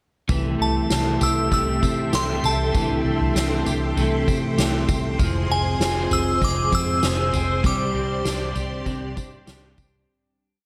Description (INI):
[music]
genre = dream pop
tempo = 98 BPM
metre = 4/4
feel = straight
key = C major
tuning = A4 = 440 Hz
[part]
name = clean electric guitar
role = accompaniment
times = 0.3-10.6 s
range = F2 to Ab4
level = -31 LUFS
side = equal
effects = tremolo, analog chorus
[part]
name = string machine, violas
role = sustained chords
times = 0.3-10.1 s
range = G4 to C6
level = -32 LUFS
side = equal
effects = ensemble chorus
[part]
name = electric guitar at the edge of break-up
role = arpeggios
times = 0.3-10.6 s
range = E3 to Ab4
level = -32 LUFS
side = equal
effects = subtle chorus, digital delay
[part]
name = vintage muted fingered electric bass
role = bass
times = 0.3-10.1 s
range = F1 to C3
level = -28 LUFS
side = equal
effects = none
[part]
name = soft-mallet drum kit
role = drums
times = 0.3-9.9 s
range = kick drum, snare drum, tambourine, toms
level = -28 LUFS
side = equal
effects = none
[part]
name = glassy synth bell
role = melody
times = 0.6-9.4 s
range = Ab5 to E6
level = -28 LUFS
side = equal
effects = chorus, digital delay
[part]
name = vibraphone with soft mallets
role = texture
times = 0.9-7.3 s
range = D4 to G4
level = -35 LUFS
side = equal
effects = digital delay
[sound]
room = moderate plate reverb, RT60 1.9 s, small room ambience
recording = none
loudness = -22 LUFS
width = mono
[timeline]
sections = 0.3-10.1 climax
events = fade-out 7.6-10.1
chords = 0.3 C6; 5.2 Fm; 7.6 Csus2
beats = | 0.30 0.91 1.52 2.13 | 2.75 3.36 3.97 4.58 | 5.19 5.81 6.42 7.03 | 7.64 8.26 8.87 9.48